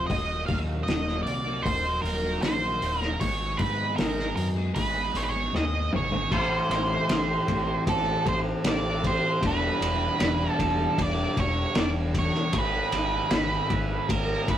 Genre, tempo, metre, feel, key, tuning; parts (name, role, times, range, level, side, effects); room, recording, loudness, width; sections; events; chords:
psychedelic rock; 77 BPM; 4/4; straight; A4 = 437 Hz
octave-fuzz lead guitar; melody; 0.0-14.6 s; A4 to F5; -28 LUFS; right 3 dB; distortion
hand-pumped harmonium; sustained chords; 0.0-14.6 s; Cb4 to Bb5; -37 LUFS; right 3 dB
overdriven semi-hollow guitar; riff; 0.0-14.6 s; Eb2 to A4; -31 LUFS; left 2 dB; rotary speaker
growling fingered electric bass; bass; 0.0-14.6 s; Eb1 to Ab2; -32 LUFS; equal; overdrive
cloth-damped thuddy drum kit; drums; 0.1-14.6 s; crash cymbal, hi-hat, kick drum, ride cymbal, snare drum, toms; -28 LUFS; left 1 dB
moderate studio ambience, RT60 0.5 s; rough rehearsal-room recording; -24 LUFS; side -10 dB against mid
0.0-6.3 A section; 6.3-14.6 B section
drum fill 5.5-6.3
0.1 Ebm; 3.2 Abm; 6.3 Am7; 9.4 Em7; 12.5 Abmadd9